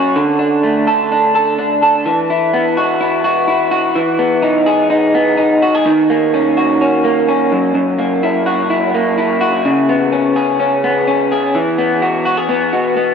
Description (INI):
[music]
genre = indie pop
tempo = 126 BPM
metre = 4/4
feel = straight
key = unclear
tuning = A4 = 439 Hz
[part]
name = electric guitar through a small old amp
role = solo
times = 0.0-13.1 s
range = F#2 to A4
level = -12 LUFS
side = equal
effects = analog chorus
[sound]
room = wet huge ambient reverb, RT60 4.2 s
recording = dreamy mix soaked in reverb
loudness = -12 LUFS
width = side -6 dB against mid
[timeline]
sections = 0.0-4.0 A section; 4.0-11.6 B section; 11.6-13.1 C section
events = none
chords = 0.2 D5; 2.1 Esus2; 4.0 Emaj7; 5.9 D#m7; 7.5 F#7; 9.7 C#5; 11.6 Eadd9